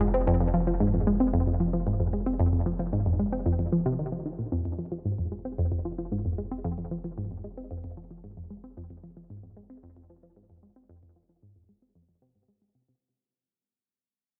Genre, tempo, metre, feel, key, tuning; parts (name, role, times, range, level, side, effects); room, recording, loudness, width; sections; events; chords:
ambient, sequencer-driven space music; 113 BPM; 4/4; straight; F minor; A4 = 439 Hz
analog pluck; riff; 0.0-12.9 s; F2 to C4; -29 LUFS; equal; chorus, phaser, analog delay
warm sub bass; bass; 0.0-13.0 s; F1; -38 LUFS; equal
light reverb, digital ambience; cassette tape; -28 LUFS; mono
0.0-13.0 A section
fade-out on sub bass 0.0-13.0; fade-out 0.0-13.0; filter sweep on synth arpeggio sound 0.0-13.0
0.0 Fm